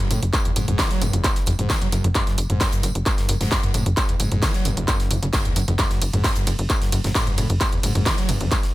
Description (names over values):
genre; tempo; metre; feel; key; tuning
driving peak-time techno; 132 BPM; 4/4; straight; F# minor; A4 = 443 Hz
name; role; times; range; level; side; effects
screaming distorted acid line; riff; 0.0-8.6 s; F#1 to F#3; -26 LUFS; equal; distortion, lush chorus, sidechain pumping, digital delay
techno drum kit; drums; 0.0-8.7 s; handclaps, hi-hat, ride cymbal, toms; -24 LUFS; equal; overdrive, sidechain pumping on hats, sidechain pumping on toms, sidechain pumping on cymbals
tight sequencer bass; bass; 0.1-8.5 s; F#1; -23 LUFS; equal; sidechain pumping
gated 80s drum kit; drums; 0.1-8.7 s; hi-hat, snare drum, tambourine; -34 LUFS; equal; sidechain pumping on hats, high-pass filter on hats, high-pass filter on snare, sidechain pumping on perc, high-pass filter on perc, high-pass filter on room
electronic kick drum; drums; 0.3-8.6 s; none; -22 LUFS; equal; distortion
room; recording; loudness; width
small room ambience; none; -18 LUFS; side -17 dB against mid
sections
0.0-8.7 A section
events
none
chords
0.0 F#5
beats
| 0.33 0.79 1.24 1.70 | 2.15 2.61 3.06 3.52 | 3.97 4.42 4.88 5.33 | 5.79 6.24 6.70 7.15 | 7.61 8.06 8.52